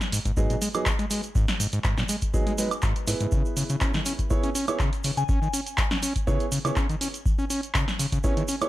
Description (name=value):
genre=acid house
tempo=122 BPM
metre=4/4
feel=straight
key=unclear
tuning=A4 = 439 Hz
part: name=punchy analog drum machine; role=drums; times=0.0-8.7 s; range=handclaps, hi-hat, snare drum, woodblock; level=-29 LUFS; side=right 1 dB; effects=none
part: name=cabasa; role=percussion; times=0.0-8.7 s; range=none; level=-35 LUFS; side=right 3 dB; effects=none
part: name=overdriven acid bass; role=riff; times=0.1-8.6 s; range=G#2 to C#4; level=-29 LUFS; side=left 1 dB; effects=distortion, ping-pong delay
part: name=electronic kick drum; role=drums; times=0.3-8.3 s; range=none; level=-26 LUFS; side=equal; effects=none
part: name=dark grand piano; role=stabs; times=0.4-8.7 s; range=F#3 to C#5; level=-30 LUFS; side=right 3 dB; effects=ping-pong delay
part: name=soft synth bell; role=melody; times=5.2-5.9 s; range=G#5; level=-33 LUFS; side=left 6 dB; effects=chorus, digital delay
room=light reverb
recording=none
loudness=-23 LUFS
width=side -15 dB against mid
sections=0.0-8.7 A section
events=none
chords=0.0 G#m7; 3.3 C#m7